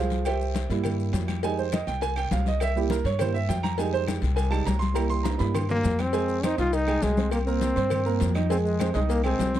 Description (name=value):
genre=latin, salsa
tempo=204 BPM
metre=4/4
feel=straight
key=F minor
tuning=A4 = 442 Hz
part: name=warm grand piano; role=accompaniment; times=0.0-9.6 s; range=F3 to Eb6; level=-28 LUFS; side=right 8 dB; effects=none
part: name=upright bass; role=bass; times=0.0-9.6 s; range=C2 to G2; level=-27 LUFS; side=left 1 dB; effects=none
part: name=congas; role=percussion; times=0.1-9.6 s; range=none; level=-32 LUFS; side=left 4 dB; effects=none
part: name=guiro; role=percussion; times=0.1-9.6 s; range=none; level=-45 LUFS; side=left 21 dB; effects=none
part: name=maracas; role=percussion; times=0.1-9.6 s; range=none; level=-47 LUFS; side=left 21 dB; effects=none
part: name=agogo bells and timbales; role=percussion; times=0.3-9.5 s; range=none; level=-38 LUFS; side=right 3 dB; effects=none
part: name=claves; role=percussion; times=0.3-9.4 s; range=none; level=-45 LUFS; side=right 7 dB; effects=none
part: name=cowbell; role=percussion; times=0.3-9.5 s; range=none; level=-36 LUFS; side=left 12 dB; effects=none
part: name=bright trombone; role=melody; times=5.7-9.6 s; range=Ab3 to F4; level=-27 LUFS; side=left 2 dB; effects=none
room=light reverb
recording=dry, close 1970s-style studio recording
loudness=-23 LUFS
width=side -12 dB against mid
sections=0.0-6.1 A section; 6.1-9.6 B section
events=grand piano solo 0.0-6.1; drum fill 5.3-6.1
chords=0.3 C7; 1.4 Fm7; 2.6 C7; 3.8 Fm7; 5.0 C7; 6.1 Fm7; 7.3 C5; 8.5 Fm7